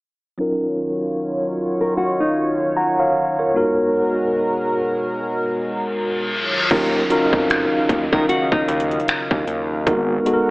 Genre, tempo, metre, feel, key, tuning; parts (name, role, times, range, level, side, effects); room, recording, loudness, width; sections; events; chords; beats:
contemporary R&B; 76 BPM; 4/4; swing 58% on 16ths; Eb minor; A4 = 436 Hz
mellow tine electric piano; accompaniment; 0.4-10.5 s; Gb3 to Bb5; -20 LUFS; equal; medium stereo tremolo, low-pass filter
chorused pulse-width pad; sustained chords; 0.4-10.5 s; Cb3 to F5; -24 LUFS; equal; low-pass filter
nylon-string guitar; arpeggios; 1.8-3.3, 8.1-9.7 s; Eb4 to Bb4; -22 LUFS; left 1 dB; low-pass filter, tape echo
reverse cymbal and downlifter; sound effects; 5.9-10.5 s; -26 LUFS; left 1 dB
fat analog bass; bass; 6.7-10.2 s; Ab1 to Eb3; -24 LUFS; equal
trap drum kit; drums; 6.7-10.5 s; crash cymbal, finger snaps, hi-hat, kick drum; -22 LUFS; equal; overdrive
moderate concert hall reverb, RT60 2.1 s; AM radio sound; -17 LUFS; side -22 dB against mid
0.4-6.7 A section; 6.7-10.5 B section
filter sweep 0.4-6.7; reverse cymbal 5.9-6.7
0.4 Ebm9; 3.6 Abm9; 6.3 Ebm9; 9.9 Abm9
| 0.39 1.18 1.97 2.76 | 3.55 4.34 5.13 5.92 | 6.71 7.50 8.29 9.08 | 9.87